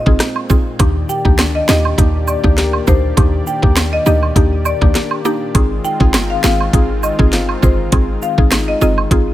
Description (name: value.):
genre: dancehall.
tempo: 101 BPM.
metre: 4/4.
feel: straight.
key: Eb major.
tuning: A4 = 440 Hz.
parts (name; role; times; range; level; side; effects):
mallet-like synth pluck; accompaniment; 0.0-9.3 s; Bb3 to Ab4; -20 LUFS; right 2 dB; chorus.
warm analog pad; sustained chords; 0.0-9.3 s; Bb2 to D5; -26 LUFS; right 1 dB; chorus, sidechain pumping.
short 808-style bass; bass; 0.1-9.3 s; G1 to Eb2; -17 LUFS; equal; none.
island pop drum kit; drums; 0.1-9.3 s; hi-hat, kick drum, rim click, snare drum; -14 LUFS; equal; none.
woodblock and cabasa; percussion; 0.4-9.1 s; none; -24 LUFS; right 7 dB; none.
nylon-string guitar; arpeggios; 0.8-9.3 s; Eb3 to C5; -24 LUFS; left 6 dB; none.
marimba with medium hard mallets; melody; 1.1-8.9 s; C5 to G5; -21 LUFS; left 2 dB; tape echo.
room: small room ambience.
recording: none.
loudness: -12 LUFS.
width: side -14 dB against mid.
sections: 0.0-9.3 A section.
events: none.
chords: 0.0 Ab6; 0.8 Ebmaj7; 5.5 Ab6.